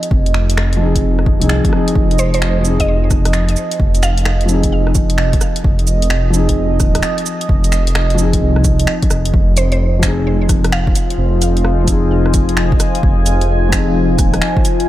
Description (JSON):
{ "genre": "future garage", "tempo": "130 BPM", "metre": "4/4", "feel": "swing 65% on 16ths", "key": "F minor", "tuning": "A4 = 438 Hz", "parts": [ { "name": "felt-muted upright piano", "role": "accompaniment", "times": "0.0-14.9 s", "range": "F3 to Ab4", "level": "-20 LUFS", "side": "left 3 dB", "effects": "sidechain pumping, tape echo" }, { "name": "deep dark ambient pad", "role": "sustained chords", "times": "0.0-14.9 s", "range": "F4 to Ab5", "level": "-22 LUFS", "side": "right 2 dB", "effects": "chorus, built-in reverb, sidechain pumping" }, { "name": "garage drum kit", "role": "drums", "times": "0.0-14.9 s", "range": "cabasa, finger snaps, hi-hat, rim click", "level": "-22 LUFS", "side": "equal", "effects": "none" }, { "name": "dark detuned saw bass", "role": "bass", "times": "0.1-14.4 s", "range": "Eb1 to C2", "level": "-15 LUFS", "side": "equal", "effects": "sidechain pumping" }, { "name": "electronic kick drum", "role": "drums", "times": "0.1-14.6 s", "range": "none", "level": "-16 LUFS", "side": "equal", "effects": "overdrive" }, { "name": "mallet-like synth pluck", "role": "melody", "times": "2.2-4.4, 9.6-11.2 s", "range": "C5 to F5", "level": "-24 LUFS", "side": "right 2 dB", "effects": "chorus, tape echo" } ], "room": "moderate plate reverb, RT60 2.3 s", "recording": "dreamy mix soaked in reverb", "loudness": "-12 LUFS", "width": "side -14 dB against mid", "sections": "0.0-9.3 A section; 9.3-14.9 B section", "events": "none", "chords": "0.0 Fm7", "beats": "| 0.11 0.57 1.03 1.49 | 1.96 2.42 2.88 3.34 | 3.80 4.26 4.72 5.19 | 5.65 6.11 6.57 7.03 | 7.49 7.96 8.42 8.88 | 9.34 9.80 10.26 10.72 | 11.19 11.65 12.11 12.57 | 13.03 13.49 13.96 14.42 | 14.88" }